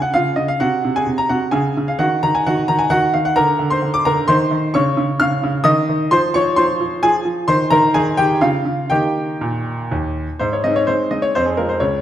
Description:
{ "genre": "classical-period piano sonatina", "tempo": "129 BPM", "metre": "3/4", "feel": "rubato", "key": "Db major, Ab major from 4.7 s", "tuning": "A4 = 440 Hz", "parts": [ { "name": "clear baby grand piano", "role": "solo", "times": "0.0-12.0 s", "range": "Db2 to F6", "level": "-15 LUFS", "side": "equal", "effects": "none" } ], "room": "wet recital hall reverb, RT60 1.4 s", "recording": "dark, warm production", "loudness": "-15 LUFS", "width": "side -11 dB against mid", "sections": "0.0-10.4 A section; 10.4-12.0 B section", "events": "none", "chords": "0.0 Db; 0.6 Ab/C; 1.5 Db5; 2.0 Ebm; 3.4 Bb/D; 4.3 Cm/Eb; 4.7 Db; 5.7 N.C.; 6.1 Fm; 7.5 Cm/Eb; 8.4 Db; 8.9 Eb; 10.4 Ab; 11.3 Fm" }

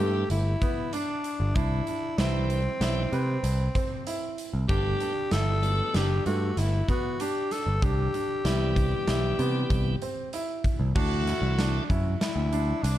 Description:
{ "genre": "progressive instrumental, band music in an uneven meter", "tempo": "96 BPM", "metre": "5/4", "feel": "straight", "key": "G major", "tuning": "A4 = 440 Hz", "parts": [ { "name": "growling tenor saxophone", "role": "melody", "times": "0.0-13.0 s", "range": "C4 to A4", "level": "-31 LUFS", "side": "left 1 dB", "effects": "plate reverb, tape echo" }, { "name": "tonewheel organ", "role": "accompaniment", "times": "0.0-11.8 s", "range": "E3 to B4", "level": "-36 LUFS", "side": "left 1 dB", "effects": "slow rotary speaker" }, { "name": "clear concert grand piano", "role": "arpeggios", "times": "0.0-13.0 s", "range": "A3 to B4", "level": "-34 LUFS", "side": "right 4 dB", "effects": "none" }, { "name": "picked electric bass", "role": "bass", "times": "0.0-13.0 s", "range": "F#1 to C3", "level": "-26 LUFS", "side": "equal", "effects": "none" }, { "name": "big rock drum kit", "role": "drums", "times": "0.3-13.0 s", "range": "crash cymbal, hi-hat, kick drum, snare drum", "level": "-31 LUFS", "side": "equal", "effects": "none" } ], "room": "light reverb", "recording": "dark, warm production", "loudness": "-24 LUFS", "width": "side -13 dB against mid", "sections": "0.0-11.0 A section; 11.0-13.0 B section", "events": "none", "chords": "0.0 Gadd9; 1.6 Cmaj7; 4.7 Gmaj9; 7.8 Cmaj7; 11.0 Dsus2" }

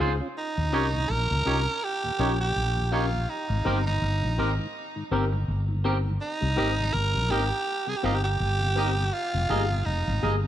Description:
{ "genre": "reggae", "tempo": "82 BPM", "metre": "4/4", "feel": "swing 57% on 16ths", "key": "Ab major", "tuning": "A4 = 440 Hz", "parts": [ { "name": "mellow tonewheel organ", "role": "accompaniment", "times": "0.0-10.5 s", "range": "Eb2 to G4", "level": "-37 LUFS", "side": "left 2 dB", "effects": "chorus vibrato, slow rotary speaker" }, { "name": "tine electric piano", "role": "accompaniment", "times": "0.0-10.4 s", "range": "Bb3 to C5", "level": "-33 LUFS", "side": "left 5 dB", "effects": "overdrive, ensemble chorus" }, { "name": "twangy electric guitar", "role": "stabs", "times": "0.0-10.4 s", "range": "C4 to Eb5", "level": "-33 LUFS", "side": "right 4 dB", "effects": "spring reverb" }, { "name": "mellow fretless electric bass", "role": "bass", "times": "0.0-10.4 s", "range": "F1 to Eb2", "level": "-26 LUFS", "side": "equal", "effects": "none" }, { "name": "breathy tenor saxophone", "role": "melody", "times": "0.4-10.3 s", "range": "Eb4 to Bb4", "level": "-29 LUFS", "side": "right 2 dB", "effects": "tape echo" } ], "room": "light reverb", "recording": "nothing above 11.0 kHz", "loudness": "-24 LUFS", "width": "side -11 dB against mid", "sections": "0.4-10.5 A section", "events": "none", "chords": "0.4 Eb7; 3.3 Abmaj9; 9.1 Fm11" }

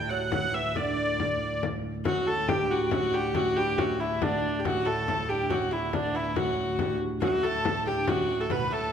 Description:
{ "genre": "medieval dance", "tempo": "139 BPM", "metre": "3/4", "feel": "straight", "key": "D major", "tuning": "A4 = 441 Hz", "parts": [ { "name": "rich hurdy-gurdy", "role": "melody", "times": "0.0-8.9 s", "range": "D4 to F#5", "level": "-28 LUFS", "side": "equal", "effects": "none" }, { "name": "lute", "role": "second line", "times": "0.0-8.9 s", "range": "D2 to G3", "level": "-34 LUFS", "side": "right 6 dB", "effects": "none" }, { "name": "pipe organ, flutes", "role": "drone", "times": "0.0-8.9 s", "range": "D2 to A2", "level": "-35 LUFS", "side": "right 1 dB", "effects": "none" }, { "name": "frame drum", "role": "percussion", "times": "0.1-8.7 s", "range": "none", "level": "-33 LUFS", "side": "left 5 dB", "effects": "none" }, { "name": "bright soprano recorder", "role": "second line", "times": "2.1-8.9 s", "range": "D5 to B5", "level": "-35 LUFS", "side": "left 4 dB", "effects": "none" } ], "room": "wet recital hall reverb, RT60 1.5 s", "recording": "none", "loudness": "-25 LUFS", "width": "side -8 dB against mid", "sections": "0.0-2.1 A section; 2.1-8.9 A section", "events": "none", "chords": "none" }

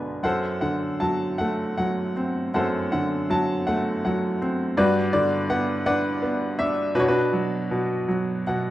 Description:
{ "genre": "classical, lyrical solo piano", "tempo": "54 BPM (dotted quarters)", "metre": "6/8", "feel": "uneven beats, rubato", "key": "unclear", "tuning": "A4 = 440 Hz", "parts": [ { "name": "bright upright piano", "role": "solo", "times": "0.0-8.7 s", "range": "B1 to A5", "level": "-22 LUFS", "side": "equal", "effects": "none" } ], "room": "light reverb", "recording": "dark, warm production", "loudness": "-22 LUFS", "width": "side -14 dB against mid", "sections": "0.0-8.7 A section", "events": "upright piano fill 8.1-8.7", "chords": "0.2 D7/F#; 4.8 Gmaj7; 7.0 Bm" }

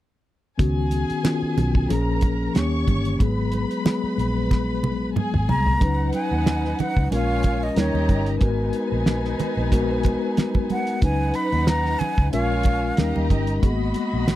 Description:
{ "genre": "lush 1970s-style soul", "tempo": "92 BPM", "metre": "4/4", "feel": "swing 54% on 16ths", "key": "G# dorian", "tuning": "A4 = 444 Hz", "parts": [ { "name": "dark symphonic violin section", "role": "second line", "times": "0.6-14.4 s", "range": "D#4 to C#6", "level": "-30 LUFS", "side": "right 1 dB", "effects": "none" }, { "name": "mellow tine electric piano", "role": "accompaniment", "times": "0.6-14.4 s", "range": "D#3 to B4", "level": "-25 LUFS", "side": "left 3 dB", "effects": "fast stereo tremolo" }, { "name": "vintage muted fingered electric bass", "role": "bass", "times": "0.6-14.4 s", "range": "G1 to D#2", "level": "-24 LUFS", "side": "equal", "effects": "none" }, { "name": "cloth-damped thuddy drum kit", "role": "drums", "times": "0.6-14.4 s", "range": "hi-hat, kick drum, snare drum, toms", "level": "-21 LUFS", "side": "equal", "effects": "none" }, { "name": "congas", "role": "percussion", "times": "0.6-14.4 s", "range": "none", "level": "-29 LUFS", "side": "right 8 dB", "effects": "none" }, { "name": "breathy silver concert flute", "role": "melody", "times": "5.5-13.3 s", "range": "C#5 to B5", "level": "-26 LUFS", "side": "equal", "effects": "none" } ], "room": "little or no reverb", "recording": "dry, close 1970s-style studio recording", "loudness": "-20 LUFS", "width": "side -14 dB against mid", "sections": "0.6-5.8 A section; 5.8-14.4 B section", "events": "drum fill 4.5-5.8", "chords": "0.6 C#9sus4; 1.9 A#m7; 2.5 D#7; 3.2 G#m9; 5.8 C#9sus4; 7.1 A#m7; 7.8 D#7; 8.4 G#m9; 11.0 C#9sus4; 12.3 A#m7; 13.0 D#7; 13.6 G#m9" }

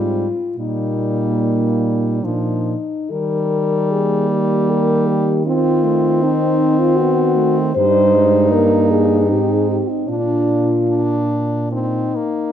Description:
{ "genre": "classical, lyrical piece for horn quartet", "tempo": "65-80 BPM", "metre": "3/4", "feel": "rubato", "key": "Eb major", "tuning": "A4 = 439 Hz", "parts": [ { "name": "dark French horn", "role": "melody", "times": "0.0-12.5 s", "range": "Eb4 to C5", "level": "-18 LUFS", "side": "left 5 dB", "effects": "none" }, { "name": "dark French horn", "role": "second line", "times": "0.0-12.1 s", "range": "G3 to D4", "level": "-22 LUFS", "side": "right 10 dB", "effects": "none" }, { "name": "clear French horn", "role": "accompaniment", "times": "0.0-12.5 s", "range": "F3 to Eb4", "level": "-21 LUFS", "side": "left 1 dB", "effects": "none" }, { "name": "mellow French horn", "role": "bass", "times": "0.0-12.2 s", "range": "G2 to Eb3", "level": "-21 LUFS", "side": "right 2 dB", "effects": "none" } ], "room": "light reverb", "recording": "close, detailed microphones", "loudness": "-14 LUFS", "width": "side -10 dB against mid", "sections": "0.0-3.1 A section; 3.1-12.5 A section", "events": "none", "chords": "0.0 Abmaj7; 0.6 Eb/Bb; 2.2 Bb; 3.1 Eb; 5.5 Ebm69; 7.8 Eb/G; 9.3 Abmaj7; 10.1 Bb" }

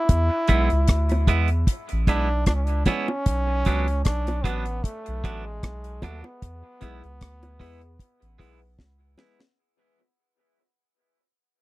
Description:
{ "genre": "dub reggae", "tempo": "76 BPM", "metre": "4/4", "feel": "swing 55% on 16ths", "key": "unclear", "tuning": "A4 = 440 Hz", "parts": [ { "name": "brilliant trombone", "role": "melody", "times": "0.0-8.8 s", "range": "G#3 to E4", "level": "-29 LUFS", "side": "equal", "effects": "dub echo" }, { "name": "soft dub sub bass", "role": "bass", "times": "0.1-9.2 s", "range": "A1 to E2", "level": "-24 LUFS", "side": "equal", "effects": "none" }, { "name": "deep reggae drum kit", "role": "drums", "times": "0.1-9.6 s", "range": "hi-hat, kick drum, rim click, snare drum", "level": "-21 LUFS", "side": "equal", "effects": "none" }, { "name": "twangy electric guitar", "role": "accompaniment", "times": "0.5-9.4 s", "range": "F#3 to E4", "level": "-29 LUFS", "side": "right 5 dB", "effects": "high-pass filter, dub echo" }, { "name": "bongos", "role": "percussion", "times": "1.1-9.6 s", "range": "none", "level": "-29 LUFS", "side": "equal", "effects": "high-pass filter on perc, dub echo" }, { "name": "warm grand piano", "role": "stabs", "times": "6.8-9.4 s", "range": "B3 to B4", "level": "-55 LUFS", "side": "left 5 dB", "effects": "none" } ], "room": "little or no reverb", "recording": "dry, close 1970s-style studio recording", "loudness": "-21 LUFS", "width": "side -18 dB against mid", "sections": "0.0-9.6 A section", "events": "fade-out 0.0-9.6; drum fill 8.8-9.6", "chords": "0.1 E; 3.3 Bm; 6.4 E" }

